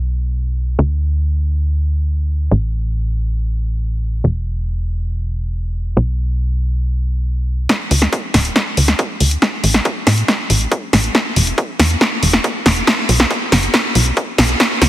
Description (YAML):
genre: uplifting trance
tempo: 139 BPM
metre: 4/4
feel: straight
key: unclear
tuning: A4 = 442 Hz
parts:
  - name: tight sequencer bass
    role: bass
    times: 0.0-14.9 s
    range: D1 to A2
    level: -16 LUFS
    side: equal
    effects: sidechain pumping
  - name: electronic kick drum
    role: drums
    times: 7.7-14.7 s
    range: none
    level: -20 LUFS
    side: equal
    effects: overdrive, high-pass filter on kick
  - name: techno drum kit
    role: drums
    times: 7.7-14.9 s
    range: hi-hat, snare drum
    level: -14 LUFS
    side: equal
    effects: overdrive
room: light reverb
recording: heavily compressed radio sound, multiband compression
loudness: -14 LUFS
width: side -14 dB against mid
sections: 0.0-7.7 A section; 7.7-14.9 B section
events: build-up 7.7-14.9; drum fill 7.7-14.9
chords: none